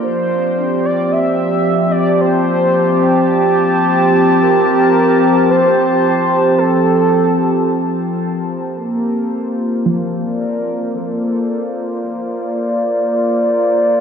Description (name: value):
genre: ambient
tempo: 55 BPM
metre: 4/4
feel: straight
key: unclear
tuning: A4 = 439 Hz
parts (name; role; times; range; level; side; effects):
- warm velvety synth lead; melody; 0.0-14.0 s; A4 to E5; -18 LUFS; right 1 dB; chorus, diffuse ambient delay
- warm analog pad; sustained chords; 0.0-14.0 s; F3 to A5; -14 LUFS; equal; chorus
- soft round pluck; arpeggios; 0.0-14.0 s; F3 to E5; -24 LUFS; right 2 dB; analog chorus, diffuse ambient delay
- organ-like drone; drone; 0.0-8.9 s; Bb3 to G4; -29 LUFS; equal; none
room: wet concert hall reverb, RT60 2.3 s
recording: dark, warm production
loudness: -12 LUFS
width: side -7 dB against mid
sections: 0.0-8.8 A section; 8.8-14.0 B section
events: none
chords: 0.0 Fmaj7